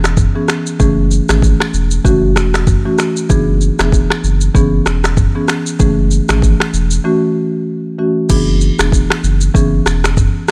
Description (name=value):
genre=afrobeats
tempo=96 BPM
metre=4/4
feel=swing 58% on 16ths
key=F# minor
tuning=A4 = 442 Hz
part: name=marimba with medium mallets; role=accompaniment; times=0.0-10.5 s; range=E3 to G#4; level=-18 LUFS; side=equal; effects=none
part: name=saturated sub bass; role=bass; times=0.0-10.3 s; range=E1 to G#1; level=-17 LUFS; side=equal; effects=none
part: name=afro-pop drum kit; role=drums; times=0.0-10.5 s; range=crash cymbal, finger snaps, kick drum, rim click, shaker, toms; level=-17 LUFS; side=equal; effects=vintage 12-bit sampler grit
room=little or no reverb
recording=none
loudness=-13 LUFS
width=mono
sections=0.0-8.3 A section; 8.3-10.5 A section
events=break 7.0-8.3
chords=0.0 C#m7; 0.8 Amaj7/F#; 2.0 F#m7; 3.3 E7; 4.5 C#m7; 5.8 Amaj7/F#; 7.0 F#m7; 8.3 E7; 9.5 C#m7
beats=0.17 | 0.80 1.42 2.05 2.67 | 3.30 3.92 4.55 5.17 | 5.80 6.42 7.05 7.67 | 8.30 8.92 9.55 10.17